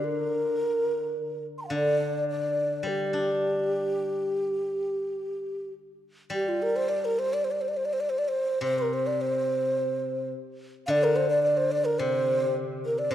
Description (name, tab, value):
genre	chinese traditional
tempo	106 BPM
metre	4/4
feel	rubato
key	G yu mode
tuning	A4 = 441 Hz
part	breathy low xiao	melody	0.0-13.1 s	F4 to C6	-26 LUFS	equal	none
part	steel-string zither	accompaniment	0.0-13.1 s	C3 to D4	-31 LUFS	left 1 dB	none
room	moderate concert hall reverb, RT60 2.2 s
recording	dark, warm production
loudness	-25 LUFS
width	side -11 dB against mid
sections	0.0-6.3 A section; 6.3-13.1 B section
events	none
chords	none